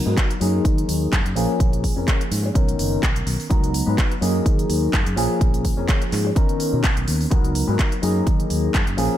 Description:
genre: filtered disco house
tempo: 126 BPM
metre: 4/4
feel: swing 55% on 16ths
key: F# major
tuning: A4 = 439 Hz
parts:
  - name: tine electric piano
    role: accompaniment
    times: 0.0-9.2 s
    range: D#3 to A#5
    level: -25 LUFS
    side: right 1 dB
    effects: medium stereo tremolo, phaser, vintage 12-bit sampler grit, sidechain pumping, low-pass filter
  - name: electric guitar through a small old amp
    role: riff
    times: 0.1-9.2 s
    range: B3 to B4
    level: -27 LUFS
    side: left 6 dB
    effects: wide subtle chorus, sidechain pumping, low-pass filter
  - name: fingered electric bass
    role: bass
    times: 0.1-9.1 s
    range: F#1 to D#3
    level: -23 LUFS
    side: equal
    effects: sidechain pumping, low-pass filter
  - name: electronic kick drum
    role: drums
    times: 0.2-8.8 s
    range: none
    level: -20 LUFS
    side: equal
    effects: studio reverb
  - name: house drum kit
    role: drums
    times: 0.2-9.1 s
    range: handclaps, hi-hat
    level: -28 LUFS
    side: equal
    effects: sidechain pumping on hats, studio reverb, sidechain pumping on cymbals
room: digital ambience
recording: none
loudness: -18 LUFS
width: side -12 dB against mid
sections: 0.0-9.2 A section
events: filter sweep 0.0-9.2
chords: 0.4 F#69; 1.4 A#m7; 2.6 Bmaj9; 3.5 C#13sus4; 4.2 F#69; 5.2 A#m7; 6.4 Bmaj9; 7.3 C#13sus4; 8.0 F#69

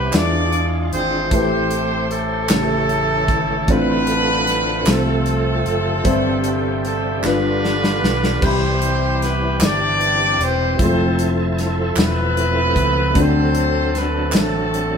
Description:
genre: slow gospel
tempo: 51 BPM (dotted quarters)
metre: 6/8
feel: straight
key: C major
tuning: A4 = 441 Hz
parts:
  - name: clear horn section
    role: melody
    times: 0.0-15.0 s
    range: A3 to D5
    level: -20 LUFS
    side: equal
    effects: none
  - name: dark upright piano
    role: accompaniment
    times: 0.0-15.0 s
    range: G2 to B5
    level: -22 LUFS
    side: left 1 dB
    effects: none
  - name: bright tonewheel organ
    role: sustained chords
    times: 0.0-15.0 s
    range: C3 to C5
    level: -25 LUFS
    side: right 1 dB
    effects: fast rotary speaker, overdrive, chorus vibrato
  - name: fingered electric bass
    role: bass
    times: 0.0-15.0 s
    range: E1 to E2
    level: -23 LUFS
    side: equal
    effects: none
  - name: modern studio drum kit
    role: drums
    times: 0.1-14.9 s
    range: crash cymbal, hi-hat, kick drum, snare drum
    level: -21 LUFS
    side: equal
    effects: none
  - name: group handclap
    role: percussion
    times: 0.1-14.7 s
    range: none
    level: -28 LUFS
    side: right 4 dB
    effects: none
room: moderate stone room reverb, RT60 1.2 s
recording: band playing live in one room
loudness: -16 LUFS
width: side -6 dB against mid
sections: 0.0-8.4 A section; 8.4-15.0 A section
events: drum fill 7.2-8.4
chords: 0.1 E7b9; 1.3 Am7; 2.5 A7; 3.7 Dm7/A; 4.9 F/C; 6.1 C/G; 7.2 G7; 8.4 Cmaj7; 10.8 Fmaj7; 13.2 D7

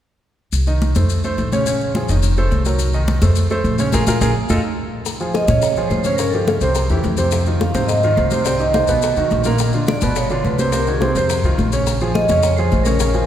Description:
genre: Afro-Cuban jazz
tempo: 212 BPM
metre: 4/4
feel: straight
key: Bb minor from 5.1 s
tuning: A4 = 440 Hz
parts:
  - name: upright bass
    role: bass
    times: 0.5-13.3 s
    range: F1 to Bb2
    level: -19 LUFS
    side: equal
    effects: none
  - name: congas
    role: percussion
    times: 0.5-13.3 s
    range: none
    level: -24 LUFS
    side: left 1 dB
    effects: none
  - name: maracas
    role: percussion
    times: 0.5-13.3 s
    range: none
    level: -29 LUFS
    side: left 7 dB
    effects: none
  - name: warm baby grand piano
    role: accompaniment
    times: 0.7-13.3 s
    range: Bb2 to Eb5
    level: -20 LUFS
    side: right 1 dB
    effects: none
  - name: bongos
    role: percussion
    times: 5.1-13.1 s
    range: none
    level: -28 LUFS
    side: left 5 dB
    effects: none
  - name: vibraphone with medium mallets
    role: melody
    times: 5.4-13.3 s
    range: Ab4 to F5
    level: -20 LUFS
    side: right 2 dB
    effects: none
room: wet church reverb, RT60 3.0 s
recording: recorded in a church or concert hall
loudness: -15 LUFS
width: side -10 dB against mid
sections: 0.5-5.1 A section; 5.1-13.3 B section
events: band accent 3.9-5.1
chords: 0.5 Cm6; 1.1 F; 1.7 Bbm7; 2.2 F7; 2.8 Cm7b5; 3.4 F; 3.9 Bb5; 4.5 F7; 5.1 Bbm11; 6.2 A7alt; 6.8 C; 7.3 Fm7; 8.5 Cm; 9.0 B; 9.6 Bb6; 10.2 G7; 10.7 Cdim; 11.3 F5; 11.9 Bbm9

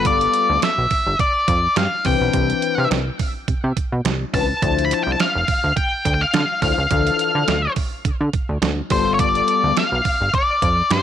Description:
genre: early-eighties boogie funk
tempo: 105 BPM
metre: 4/4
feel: swing 56% on 16ths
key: D dorian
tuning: A4 = 440 Hz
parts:
  - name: octave-fuzz lead guitar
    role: melody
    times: 0.0-11.0 s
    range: C5 to B5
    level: -19 LUFS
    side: left 1 dB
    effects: distortion
  - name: mellow synth brass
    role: accompaniment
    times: 0.0-9.8 s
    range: E3 to C5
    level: -23 LUFS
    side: left 12 dB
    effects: chorus
  - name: plucky analog bass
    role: bass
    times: 0.0-11.0 s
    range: F1 to D3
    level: -22 LUFS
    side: right 1 dB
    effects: none
  - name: detuned 8-bit digital drum machine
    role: drums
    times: 0.1-11.0 s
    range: hi-hat, kick drum, snare drum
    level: -22 LUFS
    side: right 4 dB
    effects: none
room: light reverb, digital ambience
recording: 1960s-style stereo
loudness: -16 LUFS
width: side -10 dB against mid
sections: 0.0-11.0 A section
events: none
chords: 0.0 G9; 2.1 Cmaj9; 4.6 Dm9; 8.9 G9

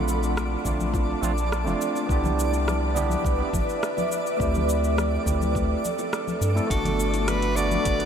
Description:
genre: sunset chillout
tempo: 104 BPM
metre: 4/4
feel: straight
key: unclear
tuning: A4 = 440 Hz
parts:
  - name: overdriven tine electric piano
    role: accompaniment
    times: 0.0-8.1 s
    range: A3 to A4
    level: -28 LUFS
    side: equal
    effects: auto-pan, analog delay, shimmer reverb
  - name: ethereal airy pad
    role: sustained chords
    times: 0.0-8.1 s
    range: A4 to B5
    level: -29 LUFS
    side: right 2 dB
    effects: ensemble chorus, built-in reverb, shimmer reverb
  - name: round analog bass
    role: bass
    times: 0.0-8.0 s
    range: F1 to G2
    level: -26 LUFS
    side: equal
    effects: none
  - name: twinkling granular texture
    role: texture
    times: 0.0-8.1 s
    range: D5 to D6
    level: -36 LUFS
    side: equal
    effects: built-in reverb, shimmer reverb
  - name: deep house drum kit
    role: drums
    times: 0.1-8.1 s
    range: cabasa, hi-hat, rim click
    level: -34 LUFS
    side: equal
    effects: none
  - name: congas and bongos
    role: percussion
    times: 0.4-7.8 s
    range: none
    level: -35 LUFS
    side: left 4 dB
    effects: none
  - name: electronic kick drum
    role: drums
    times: 0.6-8.0 s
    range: none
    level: -28 LUFS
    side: equal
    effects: none
  - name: bright soprano saxophone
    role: melody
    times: 6.7-8.1 s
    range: A4 to D5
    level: -26 LUFS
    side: equal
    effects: shimmer reverb
room: wet huge ambient reverb, RT60 7.7 s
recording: dreamy mix soaked in reverb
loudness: -22 LUFS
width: side -8 dB against mid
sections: 0.0-8.1 A section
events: none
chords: 0.0 Bbmaj9; 2.1 Cmaj9; 4.4 D7sus4; 6.7 Gmaj9

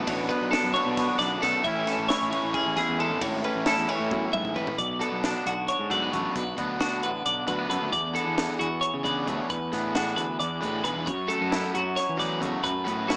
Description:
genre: math rock and midwest emo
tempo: 267 BPM (eighths)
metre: 7/8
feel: straight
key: unclear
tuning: A4 = 440 Hz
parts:
  - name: twangy electric guitar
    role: accompaniment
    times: 0.0-13.2 s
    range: D2 to E4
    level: -34 LUFS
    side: equal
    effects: none
  - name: twelve-string electric guitar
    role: arpeggios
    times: 0.0-13.2 s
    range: F#4 to E5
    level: -30 LUFS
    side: equal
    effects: analog delay
  - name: overdriven electric guitar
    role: riff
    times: 0.0-13.2 s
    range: A2 to G#4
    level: -34 LUFS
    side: equal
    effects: none
  - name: fuzz fingered electric bass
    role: bass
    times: 0.0-13.2 s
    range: G#1 to E3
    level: -36 LUFS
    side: equal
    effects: overdrive
  - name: compact cocktail drum kit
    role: drums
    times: 0.1-13.2 s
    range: hi-hat, kick drum, ride cymbal, snare drum, toms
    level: -36 LUFS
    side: equal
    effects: none
room: little or no reverb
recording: small speaker sound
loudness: -27 LUFS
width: mono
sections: 0.0-4.8 A section; 4.8-13.2 B section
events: drum fill 4.1-4.8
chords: 0.0 Bm7; 1.6 Amaj7; 4.8 Bm7; 7.9 E9sus4; 11.1 F#m7

